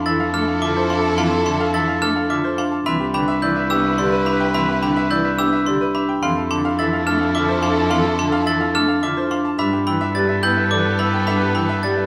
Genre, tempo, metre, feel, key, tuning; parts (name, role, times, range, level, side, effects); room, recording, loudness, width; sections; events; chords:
classical, minimalist pattern music; 107 BPM; 3/4; straight; F lydian; A4 = 440 Hz
bright baby grand piano; melody; 0.0-12.1 s; G4 to A5; -29 LUFS; equal
warm studio violin section; sustained chords; 0.0-12.1 s; B3 to B4; -30 LUFS; equal
rich cello; bass; 0.0-12.1 s; C2 to G2; -27 LUFS; equal
clear clarinet; second line; 0.1-12.1 s; A4 to B4; -30 LUFS; equal
pipe organ, foundations; accompaniment; 0.1-11.9 s; D3 to B3; -31 LUFS; equal
glockenspiel with brass mallets; arpeggios; 0.1-12.0 s; B5 to A6; -26 LUFS; equal
marimba with hard mallets; arpeggios; 0.1-12.0 s; C4 to A4; -24 LUFS; equal
wet large studio reverb, RT60 1.2 s; -19 LUFS; mono
0.0-12.1 A section
0.0 Fmaj7; 2.9 Cmaj7; 6.2 Fmaj7; 9.6 Gadd9